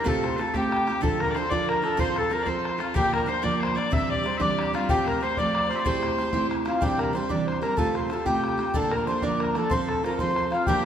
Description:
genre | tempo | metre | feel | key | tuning
celtic folk, Celtic jig | 124 BPM (dotted quarters) | 6/8 | straight | unclear | A4 = 440 Hz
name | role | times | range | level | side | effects
mellow accordion | melody | 0.0-10.8 s | F4 to E5 | -26 LUFS | left 1 dB | none
loud bright bagpipes | second line | 0.0-6.5, 10.7-10.8 s | F4 to E5 | -31 LUFS | left 5 dB | none
picked steel-string acoustic guitar | accompaniment | 0.0-10.9 s | Bb2 to Bb4 | -28 LUFS | right 3 dB | none
bodhran | percussion | 0.1-10.8 s | none | -30 LUFS | left 2 dB | none
room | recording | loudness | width
wet scoring stage reverb, RT60 2.0 s | recorded in a church or concert hall | -22 LUFS | side -9 dB against mid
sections
0.0-6.8 A section; 6.8-10.9 A section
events
none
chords
0.1 Fadd9/C; 1.0 Dm; 2.0 F; 3.0 Bb; 3.9 Cadd9; 4.9 Fadd9; 5.9 C6; 6.8 Cadd9; 7.8 Fadd9/C; 8.7 Bb; 9.7 F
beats
| 0.06 0.54 | 1.02 1.51 | 1.99 2.47 | 2.96 3.44 | 3.92 4.40 | 4.89 5.37 | 5.85 6.33 | 6.82 7.30 | 7.78 8.26 | 8.74 9.23 | 9.71 10.19 | 10.67

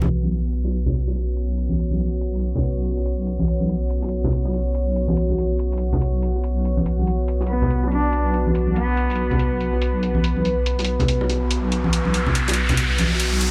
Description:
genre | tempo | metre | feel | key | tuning
deep dubstep | 142 BPM | 4/4 | swing 61% on 16ths, half-time | unclear | A4 = 440 Hz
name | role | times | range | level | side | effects
deep dark ambient pad | sustained chords | 0.0-13.5 s | B3 to C#5 | -29 LUFS | equal | chorus, built-in reverb
congas and bongos | percussion | 0.0-13.2 s | none | -27 LUFS | equal | none
deep soft wobble bass | bass | 0.1-13.5 s | B1 | -24 LUFS | equal | chorus
electronic hi-hat | drums | 0.1-13.5 s | none | -32 LUFS | equal | none
warm cello | melody | 7.5-9.4 s | B3 to D4 | -29 LUFS | equal | vintage 12-bit sampler grit, dub echo
riser | sound effects | 11.3-13.5 s | none | -27 LUFS | equal | none
room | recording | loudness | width
light reverb | low-pass filter | -22 LUFS | mono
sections
0.1-13.5 A section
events
filter sweep 0.1-13.5; riser 11.3-13.5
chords
0.1 B5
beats
| 0.10 0.52 0.94 1.36 | 1.79 2.21 2.63 3.06 | 3.48 3.90 4.32 4.75 | 5.17 5.59 6.01 6.44 | 6.86 7.28 7.70 8.13 | 8.55 8.97 9.39 9.82 | 10.24 10.66 11.08 11.51 | 11.93 12.35 12.77 13.20

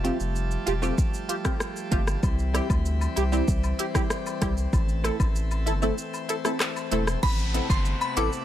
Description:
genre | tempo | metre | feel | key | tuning
dancehall | 96 BPM | 4/4 | straight | A minor | A4 = 439 Hz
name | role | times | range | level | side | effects
punchy chord stab | accompaniment | 0.0-8.3 s | G3 to A4 | -29 LUFS | right 1 dB | chorus, phaser, sidechain pumping
pipe organ, plenum | sustained chords | 0.0-8.4 s | C3 to C4 | -34 LUFS | left 1 dB | sidechain pumping
saturated sub bass | bass | 0.0-8.3 s | E1 to D2 | -27 LUFS | equal | none
afro-pop drum kit | drums | 0.0-8.4 s | crash cymbal, handclaps, hi-hat, kick drum, rim click, shaker | -26 LUFS | equal | none
woodblock and cabasa | percussion | 2.2-8.3 s | none | -39 LUFS | left 6 dB | none
glassy synth bell | melody | 7.2-8.3 s | B5 to D6 | -30 LUFS | left 1 dB | chorus, phaser, ping-pong delay
downlifter | sound effects | 7.2-8.4 s | none | -35 LUFS | equal | none
room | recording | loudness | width
digital ambience | none | -23 LUFS | side -12 dB against mid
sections
0.0-7.2 A section; 7.2-8.4 B section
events
break 6.0-7.2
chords
0.0 Fadd9; 2.2 C; 4.7 Am; 7.2 Amadd9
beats
0.36 0.98 1.61 | 2.23 2.86 3.48 4.11 | 4.73 5.36 5.98 6.61 | 7.23 7.86

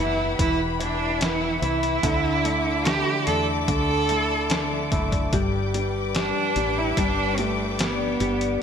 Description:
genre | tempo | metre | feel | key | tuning
pop ballad | 73 BPM | 4/4 | straight | unclear | A4 = 437 Hz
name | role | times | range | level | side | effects
warm cello | melody | 0.0-8.6 s | A3 to A4 | -25 LUFS | right 3 dB | none
clear grand piano | accompaniment | 0.0-8.6 s | D3 to A3 | -28 LUFS | equal | none
warm studio string section | sustained chords | 0.0-8.6 s | G4 to D6 | -31 LUFS | left 4 dB | none
nylon-string guitar | arpeggios | 0.0-8.6 s | E2 to G4 | -31 LUFS | left 5 dB | ensemble chorus
woody fretless electric bass | bass | 0.0-8.6 s | E1 to E2 | -30 LUFS | equal | none
lo-fi sampler-style drum kit | drums | 0.4-8.6 s | hi-hat, kick drum, snare drum | -28 LUFS | equal | overdrive, gated reverb
room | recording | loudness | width
moderate lush hall reverb, RT60 2.9 s | bright 1980s-style digital production | -21 LUFS | side -7 dB against mid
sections
0.0-8.6 A section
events
none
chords
0.0 Em; 2.0 Dsus2; 5.3 G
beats
0.39 1.22 | 2.04 2.86 3.68 4.50 | 5.33 6.15 6.97 7.79 | 8.61

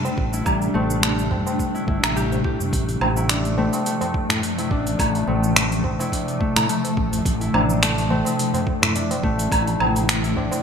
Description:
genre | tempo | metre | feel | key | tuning
organic downtempo | 106 BPM | 4/4 | swing 54% on 16ths | unclear | A4 = 439 Hz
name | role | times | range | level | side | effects
granular cloud pad | sustained chords | 0.0-10.6 s | C3 to E4 | -26 LUFS | right 1 dB | built-in reverb, sidechain pumping
Celtic harp | arpeggios | 0.0-10.6 s | G3 to G4 | -25 LUFS | left 4 dB | ping-pong delay, shimmer reverb
tabla | percussion | 0.0-10.6 s | none | -30 LUFS | right 2 dB | none
deep house drum kit | drums | 0.1-10.6 s | cabasa, finger snaps, hi-hat, woodblock | -23 LUFS | right 1 dB | overdrive
fretless electric bass | bass | 0.2-10.5 s | G1 to A2 | -24 LUFS | right 1 dB | sidechain pumping
electronic kick drum | drums | 0.2-10.5 s | none | -25 LUFS | right 1 dB | none
room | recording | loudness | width
moderate plate reverb, RT60 2.7 s | bright 1980s-style digital production | -18 LUFS | side -7 dB against mid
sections
0.0-10.6 A section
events
none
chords
0.0 Am7; 2.7 F/A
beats
| 0.46 1.03 1.60 2.16 | 2.73 3.29 3.86 4.43 | 4.99 5.56 6.12 6.69 | 7.26 7.82 8.39 8.95 | 9.52 10.09

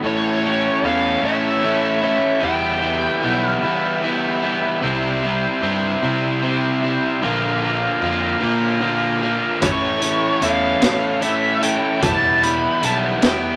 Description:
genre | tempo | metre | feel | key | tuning
psychedelic rock | 50 BPM (dotted quarters) | 6/8 | straight | unclear | A4 = 439 Hz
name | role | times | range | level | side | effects
combo organ | sustained chords | 0.0-13.6 s | E3 to F5 | -28 LUFS | equal | none
overdriven electric guitar | riff | 0.0-13.6 s | A2 to F4 | -22 LUFS | equal | none
fuzz picked electric bass | bass | 0.0-13.6 s | E1 to E3 | -28 LUFS | equal | overdrive
smooth overdriven lead guitar | melody | 0.1-4.0, 9.6-13.6 s | C#5 to B5 | -23 LUFS | equal | wah
raw garage drum kit | drums | 9.6-13.4 s | hi-hat, kick drum, snare drum | -23 LUFS | equal | none
room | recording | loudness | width
moderate studio reverb, RT60 0.5 s | none | -19 LUFS | mono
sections
0.0-13.6 A section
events
none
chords
0.0 A; 2.4 Em; 4.8 C; 7.2 Bb; 9.6 A; 12.0 Em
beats
| 0.04 1.24 | 2.44 3.63 | 4.83 6.03 | 7.23 8.43 | 9.63 10.83 | 12.03 13.23

